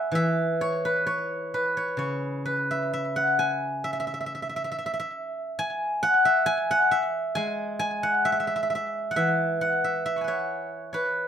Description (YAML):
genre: chinese traditional, Chinese solo plucked strings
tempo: 66 BPM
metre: 2/4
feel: rubato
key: E gong mode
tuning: A4 = 440 Hz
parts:
  - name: steel-string zither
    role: solo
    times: 0.0-11.3 s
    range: C#3 to C#6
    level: -24 LUFS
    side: equal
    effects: slapback echo
room: light reverb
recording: rough home demo mix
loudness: -24 LUFS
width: side -8 dB against mid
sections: 0.0-9.2 A section; 9.2-11.3 B section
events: none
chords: none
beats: | 0.11 1.04 | 1.96 2.89 | 3.81 4.71 | 5.60 6.49 | 7.37 8.26 | 9.17 10.09 | 10.99